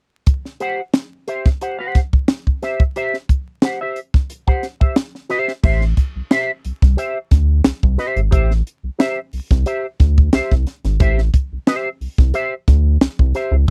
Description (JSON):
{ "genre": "funk", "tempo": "90 BPM", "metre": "4/4", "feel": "straight", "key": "A dorian", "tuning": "A4 = 440 Hz", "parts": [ { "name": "crisp fusion drum kit", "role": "drums", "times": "0.3-13.5 s", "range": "crash cymbal, hi-hat, kick drum, snare drum", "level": "-17 LUFS", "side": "equal", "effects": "none" }, { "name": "electric guitar with an envelope filter", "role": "accompaniment", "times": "0.6-13.7 s", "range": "G4 to F#5", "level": "-23 LUFS", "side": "equal", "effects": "analog chorus" }, { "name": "rubbery square bass", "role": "bass", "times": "5.6-13.7 s", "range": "G#1 to D2", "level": "-18 LUFS", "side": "equal", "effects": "none" } ], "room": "little or no reverb", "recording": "dry, close 1970s-style studio recording, vinyl crackle", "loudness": "-18 LUFS", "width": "mono", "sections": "0.3-5.6 A section; 5.6-13.7 B section", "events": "none", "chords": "0.3 C/G; 5.6 Am7 (rootless)" }